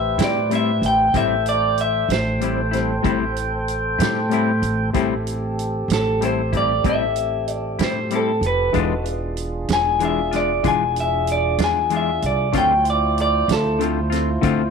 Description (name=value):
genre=slow blues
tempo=63 BPM (dotted quarters)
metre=12/8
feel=straight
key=A minor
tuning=A4 = 440 Hz
part: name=electric guitar through a small old amp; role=melody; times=0.0-13.8 s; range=A4 to G#5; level=-20 LUFS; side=equal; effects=none
part: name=mellow tonewheel organ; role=sustained chords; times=0.0-14.7 s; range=F#3 to G5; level=-27 LUFS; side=right 1 dB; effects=slow rotary speaker
part: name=upright bass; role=bass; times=0.0-14.7 s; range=E1 to A2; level=-24 LUFS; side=right 1 dB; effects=none
part: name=clean electric guitar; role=accompaniment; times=0.2-14.6 s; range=A2 to F4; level=-24 LUFS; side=left 12 dB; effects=tremolo
part: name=natural country drum kit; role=drums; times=0.2-14.6 s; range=hi-hat, kick drum, snare drum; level=-26 LUFS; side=right 6 dB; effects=none
room=moderate spring reverb, RT60 2.2 s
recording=1960s-style stereo with parts hard left and right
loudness=-18 LUFS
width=side -5 dB against mid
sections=0.0-14.7 A section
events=none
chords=0.0 Am7; 8.7 E7b9; 12.5 Dm7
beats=0.19 | 1.14 2.09 3.04 3.99 | 4.94 5.89 6.84 7.79 | 8.74 9.69 10.63 11.58 | 12.53 13.48 14.43